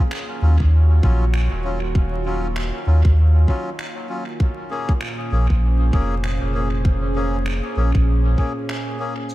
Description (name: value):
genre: ambient dub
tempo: 98 BPM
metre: 4/4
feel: swing 59% on 16ths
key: Bb minor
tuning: A4 = 440 Hz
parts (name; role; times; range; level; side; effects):
- warbly tape-like pad; sustained chords; 0.0-9.3 s; Bb2 to Db5; -28 LUFS; right 1 dB; chorus, built-in reverb
- melodica; stabs; 0.0-9.1 s; Gb3 to Ab4; -29 LUFS; left 2 dB; vintage 12-bit sampler grit, low-pass filter, dub echo
- finger snaps and shaker; drums; 0.1-9.3 s; none; -35 LUFS; right 1 dB; dub echo
- warm sub bass; bass; 0.4-8.4 s; Eb1 to Eb2; -17 LUFS; equal; none
- electronic kick drum; drums; 0.6-8.5 s; none; -18 LUFS; equal; none
room: small room ambience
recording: vinyl crackle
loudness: -17 LUFS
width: side -17 dB against mid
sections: 0.0-9.3 A section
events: none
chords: 0.0 Ebm9; 4.4 Bbm7